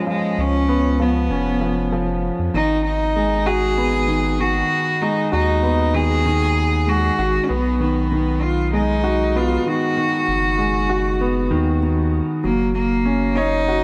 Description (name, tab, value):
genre	piano and strings electronica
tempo	97 BPM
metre	4/4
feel	straight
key	unclear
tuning	A4 = 441 Hz
part	rich cello	melody	0.0-13.8 s	G#3 to G#4	-23 LUFS	equal	none
part	warm upright piano	riff	0.0-13.8 s	D#3 to C#5	-23 LUFS	equal	none
part	round analog bass	bass	0.4-13.8 s	E#1 to E#2	-25 LUFS	equal	none
room	light reverb, small room ambience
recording	none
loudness	-19 LUFS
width	mono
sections	0.0-13.8 A section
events	none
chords	0.0 C#7; 2.6 G#m7; 7.5 B6; 12.4 F#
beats	| 0.08 0.69 1.31 1.93 | 2.55 3.17 3.79 4.41 | 5.03 5.64 6.26 6.88 | 7.50 8.12 8.74 9.36 | 9.97 10.59 11.21 11.83 | 12.45 13.07 13.69